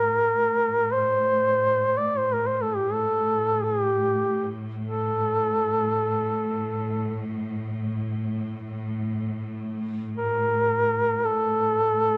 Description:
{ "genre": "caucasian folk, Caucasian lament", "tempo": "free time", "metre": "none", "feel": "none", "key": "A phrygian", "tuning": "A4 = 440 Hz", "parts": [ { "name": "mellow duduk", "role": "melody", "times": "0.0-12.2 s", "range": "G4 to D5", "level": "-24 LUFS", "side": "equal", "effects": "none" }, { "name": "clear studio string section", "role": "drone", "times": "0.0-12.2 s", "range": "A2", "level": "-32 LUFS", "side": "equal", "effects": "none" } ], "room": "light reverb", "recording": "close, detailed microphones", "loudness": "-25 LUFS", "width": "mono", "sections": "0.0-12.2 A section", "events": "none", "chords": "none" }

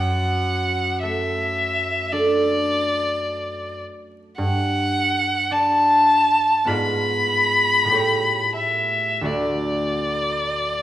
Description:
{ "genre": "classical, romantic duo for violin and harp", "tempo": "41-55 BPM", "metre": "4/4", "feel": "rubato", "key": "D major", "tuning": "A4 = 441 Hz", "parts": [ { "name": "clear violin", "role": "melody", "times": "0.0-10.8 s", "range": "D5 to B5", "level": "-19 LUFS", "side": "left 1 dB", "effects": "none" }, { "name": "concert harp", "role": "accompaniment", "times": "0.0-10.8 s", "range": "D2 to D5", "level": "-24 LUFS", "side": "right 1 dB", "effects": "none" } ], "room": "moderate recital hall reverb, RT60 1.4 s", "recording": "vinyl crackle", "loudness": "-18 LUFS", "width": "side -12 dB against mid", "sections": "0.0-10.8 A section", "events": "none", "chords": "0.0 D/F#; 4.4 G5; 6.7 G#dim7; 7.9 A7(no3); 9.3 D" }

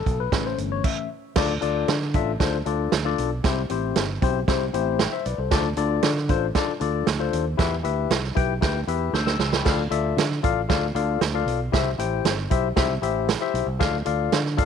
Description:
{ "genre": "uptempo 1960s-style soul", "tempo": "116 BPM", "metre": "4/4", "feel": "straight", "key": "D dorian", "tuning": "A4 = 440 Hz", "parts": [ { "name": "tine electric piano", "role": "accompaniment", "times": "0.0-14.7 s", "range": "E3 to G6", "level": "-25 LUFS", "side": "left 13 dB", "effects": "slow stereo tremolo" }, { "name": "fingered electric bass", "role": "bass", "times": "0.1-14.7 s", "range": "G1 to D3", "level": "-27 LUFS", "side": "right 1 dB", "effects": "none" }, { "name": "vintage drum kit", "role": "drums", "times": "0.1-14.7 s", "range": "crash cymbal, hi-hat, kick drum, snare drum, splash cymbal", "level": "-24 LUFS", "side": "right 5 dB", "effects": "none" } ], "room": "light reverb, small room ambience", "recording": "1960s-style stereo", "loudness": "-21 LUFS", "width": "side -7 dB against mid", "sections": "0.0-1.4 A section; 1.4-14.7 B section", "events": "tine electric piano solo 0.0-1.4; drum fill 9.1-9.7", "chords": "0.3 A; 1.4 Dm; 3.4 C; 5.5 Dm; 7.6 Em; 9.7 Dm; 11.7 C; 13.8 Dm" }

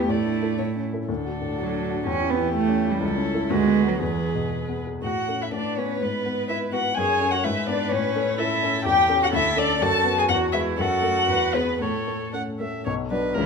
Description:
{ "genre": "quick classical-period movement for piano quartet", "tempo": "114-128 BPM", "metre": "2/4", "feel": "rubato", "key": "A major from 3.0 s", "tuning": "A4 = 442 Hz", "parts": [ { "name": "dark violin", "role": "melody", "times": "0.0-13.5 s", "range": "E4 to A5", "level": "-25 LUFS", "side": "left 5 dB", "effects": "none" }, { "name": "warm cello", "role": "second line", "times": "0.0-13.5 s", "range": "E3 to A4", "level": "-26 LUFS", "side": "right 8 dB", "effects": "none" }, { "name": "dark grand piano", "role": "accompaniment", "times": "0.0-13.5 s", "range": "B1 to D5", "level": "-27 LUFS", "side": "left 3 dB", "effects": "none" }, { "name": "warm viola", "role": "accompaniment", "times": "0.0-13.5 s", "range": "D4 to F#5", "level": "-31 LUFS", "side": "right 3 dB", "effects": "none" } ], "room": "moderate recital hall reverb, RT60 1.4 s", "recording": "close, detailed microphones", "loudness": "-21 LUFS", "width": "side -5 dB against mid", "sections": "0.0-5.0 A section; 5.0-12.9 B section", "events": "none", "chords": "0.1 Asus4; 0.6 A; 1.1 D; 2.1 C#dim/E; 3.0 A/C#; 3.5 Bm/D; 4.0 E; 5.0 A; 5.5 Bm7/A; 6.0 E/G#; 7.0 F#m; 7.5 E/G#; 7.9 A; 8.9 A7/E; 9.3 D5; 9.8 B5/F#; 10.3 E; 10.8 F#m; 11.3 E; 11.8 A; 12.9 Bm" }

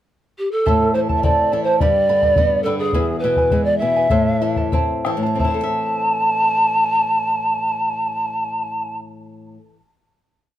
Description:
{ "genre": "andean folk, Andean ensemble", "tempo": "85-106 BPM", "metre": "2/4", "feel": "straight", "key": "A minor", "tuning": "A4 = 440 Hz", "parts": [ { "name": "breathy mellow polished pan flute", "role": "melody", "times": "0.4-9.0 s", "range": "G4 to A5", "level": "-18 LUFS", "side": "right 1 dB", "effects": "plate reverb" }, { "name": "charango", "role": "accompaniment", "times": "0.7-9.8 s", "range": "E4 to B5", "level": "-24 LUFS", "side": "right 4 dB", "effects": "none" }, { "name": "flamenco guitar", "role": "accompaniment", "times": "0.7-9.8 s", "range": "E2 to E5", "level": "-24 LUFS", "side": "left 3 dB", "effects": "none" }, { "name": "bombo", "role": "percussion", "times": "0.7-5.7 s", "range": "none", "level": "-21 LUFS", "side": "left 1 dB", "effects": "none" } ], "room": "moderate small room reverb, RT60 0.5 s", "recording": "none", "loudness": "-16 LUFS", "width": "side -12 dB against mid", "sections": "0.0-0.7 pickup bar; 0.7-5.4 A section; 5.4-8.2 final chord", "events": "slowing down 2.9-5.4", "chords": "0.0 N.C.; 0.7 Am; 1.8 G; 2.9 E; 4.1 Am" }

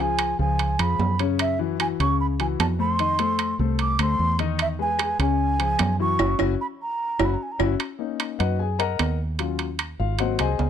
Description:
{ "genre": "Afro-Cuban jazz", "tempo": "150 BPM", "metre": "4/4", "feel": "straight", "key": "unclear", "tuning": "A4 = 440 Hz", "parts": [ { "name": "breathy mellow concert flute", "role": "melody", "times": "0.0-7.6 s", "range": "E5 to D6", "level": "-25 LUFS", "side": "right 3 dB", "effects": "none" }, { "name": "warm grand piano", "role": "accompaniment", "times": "0.0-10.7 s", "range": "C#3 to A#5", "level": "-27 LUFS", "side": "left 12 dB", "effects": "none" }, { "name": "fingered electric bass", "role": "bass", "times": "0.0-10.7 s", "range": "F#1 to F#2", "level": "-25 LUFS", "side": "right 1 dB", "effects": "none" }, { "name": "claves", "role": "percussion", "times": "0.2-10.6 s", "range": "none", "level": "-34 LUFS", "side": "left 14 dB", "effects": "none" }, { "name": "timbales", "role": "percussion", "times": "0.2-10.7 s", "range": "none", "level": "-27 LUFS", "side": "right 10 dB", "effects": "none" } ], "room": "small room ambience", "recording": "dry, close 1970s-style studio recording", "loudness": "-21 LUFS", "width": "side -8 dB against mid", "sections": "0.0-7.8 A section; 7.8-10.7 B section", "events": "band accent 6.2-7.8; grand piano solo 7.8-10.7", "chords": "0.0 C#7; 1.4 F#m7; 3.0 F; 4.6 Emaj7; 5.4 C#; 6.2 F#5; 7.8 Bmaj7; 9.4 D#m7" }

